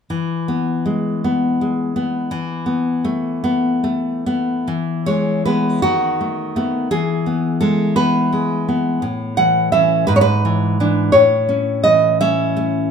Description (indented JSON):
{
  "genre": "romantic piece for solo classical guitar",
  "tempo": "46-58 BPM (dotted quarters)",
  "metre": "6/8",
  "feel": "rubato",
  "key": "E major",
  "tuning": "A4 = 444 Hz",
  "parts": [
    { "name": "nylon-string guitar", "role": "solo", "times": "0.1-12.9 s", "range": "G#2 to F#5", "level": "-15 LUFS", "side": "equal", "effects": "none" }
  ],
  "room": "moderate recital hall reverb, RT60 1.3 s",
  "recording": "minimal, uncompressed stereo recording",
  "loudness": "-15 LUFS",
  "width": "side -6 dB against mid",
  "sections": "0.1-4.7 A section; 4.7-12.9 B section",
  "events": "none",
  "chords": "0.1 E; 2.3 Esus4; 4.7 E; 5.8 B7/D#; 6.9 E; 9.0 A; 10.1 E7/G#; 11.1 A"
}